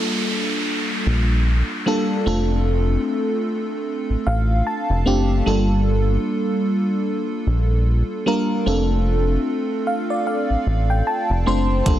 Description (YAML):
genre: contemporary R&B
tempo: 75 BPM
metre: 4/4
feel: swing 58% on 16ths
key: unclear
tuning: A4 = 440 Hz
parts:
  - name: FM electric piano with soft pad layer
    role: accompaniment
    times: 0.0-12.0 s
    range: G3 to C6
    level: -21 LUFS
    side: equal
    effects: chorus
  - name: downlifter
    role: sound effects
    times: 0.0-5.5 s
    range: none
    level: -28 LUFS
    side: right 1 dB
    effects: none
  - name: round analog bass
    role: bass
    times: 1.1-12.0 s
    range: F1 to Bb1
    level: -19 LUFS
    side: equal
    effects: none
  - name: smooth R&B drum kit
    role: drums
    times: 11.9-12.0 s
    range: hi-hat, kick drum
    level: -17 LUFS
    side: equal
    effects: none
room: little or no reverb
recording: dense, heavily limited modern master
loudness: -18 LUFS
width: side -12 dB against mid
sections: 0.0-12.0 A section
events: FM electric piano fill 3.9-5.5, 9.5-11.9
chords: 0.0 Gm9; 2.3 Dm7/F; 5.5 Gm9; 8.7 Dm7/F